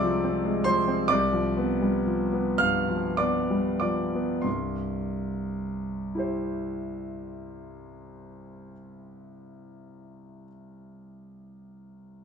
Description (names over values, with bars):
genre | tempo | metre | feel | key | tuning
classical, romantic character piece for solo piano | 30-48 BPM (dotted quarters) | 6/8 | rubato | C major | A4 = 441 Hz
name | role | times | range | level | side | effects
warm concert grand piano | solo | 0.0-12.2 s | C2 to F6 | -26 LUFS | equal | none
room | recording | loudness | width
moderate large studio reverb, RT60 0.8 s | none | -24 LUFS | side -6 dB against mid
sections
0.0-4.4 A section; 4.4-11.2 B section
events
slowing down 0.0-4.4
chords
0.0 Fm/C; 1.1 G7/C; 4.4 C